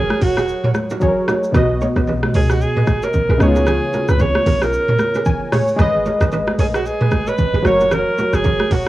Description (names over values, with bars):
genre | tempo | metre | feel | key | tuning
afrobeats | 113 BPM | 4/4 | swing 58% on 16ths | F# major | A4 = 440 Hz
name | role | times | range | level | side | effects
bright alto saxophone | melody | 0.0-8.9 s | F#4 to C#5 | -20 LUFS | right 2 dB | none
warm analog keys | accompaniment | 0.0-8.9 s | B2 to G#5 | -20 LUFS | left 1 dB | chorus, cassette tape
kora | riff | 0.0-8.8 s | D#4 to D#5 | -26 LUFS | right 5 dB | cassette tape, analog delay
warm 808-style bass | bass | 0.0-8.9 s | D#1 to C#2 | -20 LUFS | equal | none
afro-pop drum kit | drums | 0.1-8.9 s | hi-hat, kick drum, rim click, shaker, toms | -20 LUFS | equal | cassette tape
congas | percussion | 0.1-8.7 s | none | -25 LUFS | right 2 dB | none
room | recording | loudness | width
digital ambience | home recording on cassette | -14 LUFS | side -15 dB against mid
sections
0.0-8.9 A section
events
synth keys fill 5.0-5.8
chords
0.0 F#; 1.5 B; 3.4 C#7; 5.8 G#m; 7.6 F#